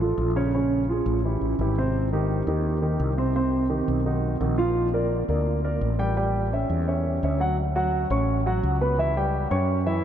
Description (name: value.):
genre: Afro-Cuban jazz.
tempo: 171 BPM.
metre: 4/4.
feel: straight.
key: unclear.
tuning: A4 = 439 Hz.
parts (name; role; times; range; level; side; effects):
dark grand piano; accompaniment; 0.0-10.0 s; C3 to C#6; -24 LUFS; right 2 dB; none.
mellow fretless electric bass; bass; 0.0-10.0 s; Ab1 to F#2; -25 LUFS; left 1 dB; none.
room: wet huge ambient reverb, RT60 7.9 s.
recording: in a vast, echoing space.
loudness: -22 LUFS.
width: side -9 dB against mid.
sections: 0.0-7.6 A section; 7.6-10.0 B section.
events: none.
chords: 0.0 Dm (rootless); 0.5 Bbm7; 1.2 A5; 1.9 Abmaj7; 3.4 Cm; 4.1 B; 4.8 Bb6; 6.2 A7; 7.6 Dmaj7; 9.0 C#dim.